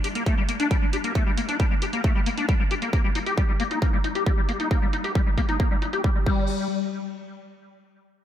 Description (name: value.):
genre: uplifting trance.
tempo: 135 BPM.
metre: 4/4.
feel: straight.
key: unclear.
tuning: A4 = 440 Hz.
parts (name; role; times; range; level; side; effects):
liquid acid bass; arpeggios; 0.0-6.7 s; G3 to G4; -26 LUFS; left 3 dB; ensemble chorus, sidechain pumping, ping-pong delay.
big-room dance drum kit; drums; 0.0-6.4 s; crash cymbal, hi-hat; -37 LUFS; right 3 dB; low-pass filter on hats, low-pass filter on perc, low-pass filter on snare, low-pass filter on cymbals, low-pass filter on room.
electronic kick drum; drums; 0.3-6.4 s; none; -22 LUFS; equal; none.
room: moderate lush hall reverb, RT60 1.9 s, digital ambience.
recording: dreamy mix soaked in reverb.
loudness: -21 LUFS.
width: side -10 dB against mid.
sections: 0.0-6.5 A section; 6.5-8.2 B section.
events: none.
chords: none.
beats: 0.26 0.71 | 1.15 1.60 2.04 2.49 | 2.93 3.38 3.82 4.26 | 4.71 5.15 5.60 6.04 | 6.49.